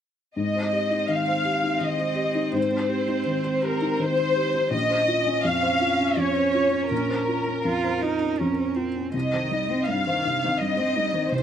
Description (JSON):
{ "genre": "neoclassical piano and strings", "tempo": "82 BPM", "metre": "3/4", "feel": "rubato", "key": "unclear", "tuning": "A4 = 439 Hz", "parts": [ { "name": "warm studio violin section", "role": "melody", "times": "0.4-11.4 s", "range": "Bb4 to F5", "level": "-24 LUFS", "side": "left 1 dB", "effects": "slapback echo" }, { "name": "warm cello", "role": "second line", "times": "0.4-11.4 s", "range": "C3 to F4", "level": "-28 LUFS", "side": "right 7 dB", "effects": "none" }, { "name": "felt-muted upright piano", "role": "accompaniment", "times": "0.4-11.4 s", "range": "Bb1 to C5", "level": "-27 LUFS", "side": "left 3 dB", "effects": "slapback echo" } ], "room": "light reverb", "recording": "recorded outdoors, with no room sound", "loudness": "-21 LUFS", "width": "side -9 dB against mid", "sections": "0.4-11.4 A section", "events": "none", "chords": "0.4 Abmaj7; 4.7 Bbmadd9; 9.1 Cm" }